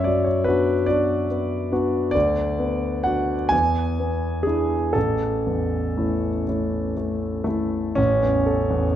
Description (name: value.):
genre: classical, romantic nocturne for solo piano.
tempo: 39-50 BPM (dotted quarters).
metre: 12/8.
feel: rubato.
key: A major.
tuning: A4 = 440 Hz.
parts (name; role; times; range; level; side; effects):
warm concert grand piano; solo; 0.0-9.0 s; A1 to G#5; -20 LUFS; equal; none.
room: moderate recital hall reverb, RT60 1.6 s.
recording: dark, warm production.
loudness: -20 LUFS.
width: side -11 dB against mid.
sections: 0.0-8.0 A section.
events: none.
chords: 0.0 Bm/F#; 2.1 Bm/D; 3.5 E7; 5.0 A.